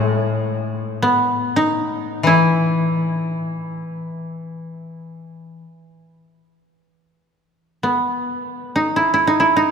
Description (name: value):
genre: japanese traditional, Japanese chamber music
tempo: free time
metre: none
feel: none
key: unclear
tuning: A4 = 440 Hz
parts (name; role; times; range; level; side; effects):
- koto; melody; 0.0-9.7 s; A3 to E4; -18 LUFS; right 1 dB; none
- koto; accompaniment; 0.0-5.6 s; A2 to E3; -21 LUFS; left 4 dB; none
room: wet cathedral reverb, RT60 4.2 s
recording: minimal, uncompressed stereo recording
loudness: -17 LUFS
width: side -6 dB against mid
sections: 0.0-9.7 A section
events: none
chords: none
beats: free time